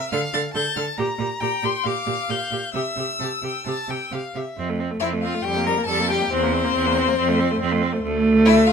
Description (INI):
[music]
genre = quick classical-period movement for string quartet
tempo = 138 BPM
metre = 4/4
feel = rubato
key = F major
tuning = A4 = 440 Hz
[part]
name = rich violin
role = melody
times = 0.0-8.7 s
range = C5 to A6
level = -25 LUFS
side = left 8 dB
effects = none
[part]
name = clear violin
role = second line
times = 0.0-8.7 s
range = C4 to Bb5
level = -27 LUFS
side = left 3 dB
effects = none
[part]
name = rich viola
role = accompaniment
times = 0.1-8.7 s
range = G3 to A4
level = -23 LUFS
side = right 1 dB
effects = none
[part]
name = clear cello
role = bass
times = 0.1-8.7 s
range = D2 to D3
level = -25 LUFS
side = right 5 dB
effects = none
[sound]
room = moderate stone room reverb, RT60 1.1 s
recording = minimal, uncompressed stereo recording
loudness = -20 LUFS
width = side -6 dB against mid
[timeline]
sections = 0.0-4.6 A section; 4.6-8.7 B section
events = none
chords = 0.1 Dm; 1.0 Gm/Bb; 2.7 C; 4.6 F; 5.4 Gm7/F; 6.3 C7/E; 7.2 F; 8.0 D5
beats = 0.12 0.55 | 0.98 1.42 1.85 2.29 | 2.74 3.20 3.66 4.12 | 4.58 5.01 5.44 5.88 | 6.32 6.75 7.18 7.61 | 8.03 8.46